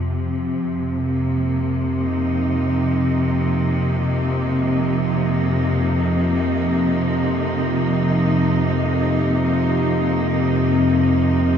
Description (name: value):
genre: dark ambient drone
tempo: free time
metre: none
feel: none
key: unclear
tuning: A4 = 440 Hz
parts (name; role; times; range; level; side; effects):
- rich symphonic cello section; sustained chords; 0.0-11.6 s; C3 to Eb4; -20 LUFS; right 1 dB; none
- analog drone; drone; 0.0-11.6 s; F2 to C3; -20 LUFS; left 1 dB; chorus
room: wet cathedral reverb, RT60 5.0 s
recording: in a vast, echoing space, nothing above 7.6 kHz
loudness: -17 LUFS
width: side -8 dB against mid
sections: 0.0-11.6 A section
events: none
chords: 0.0 F7sus4